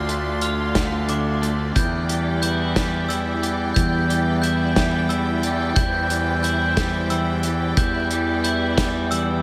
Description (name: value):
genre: post-rock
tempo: 60 BPM (dotted quarters)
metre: 6/8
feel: straight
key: unclear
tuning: A4 = 440 Hz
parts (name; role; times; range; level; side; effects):
- clear symphonic string section; sustained chords; 0.0-9.4 s; E4 to C6; -32 LUFS; equal; none
- glockenspiel with hard plastic mallets; arpeggios; 0.0-9.4 s; D6 to G6; -29 LUFS; equal; analog delay
- twelve-string electric guitar; arpeggios; 0.0-9.4 s; E2 to F4; -28 LUFS; equal; ensemble chorus, analog delay
- fuzz fingered electric bass; bass; 0.0-9.4 s; D2 to E2; -26 LUFS; equal; overdrive
- loose indie drum kit; drums; 0.1-9.3 s; hi-hat, kick drum, snare drum; -26 LUFS; equal; none
room: wet lush hall reverb, RT60 2.5 s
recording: dreamy mix soaked in reverb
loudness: -21 LUFS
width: mono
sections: 0.0-9.4 A section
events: none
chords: 0.0 Dm7; 1.8 Em7; 5.8 C/E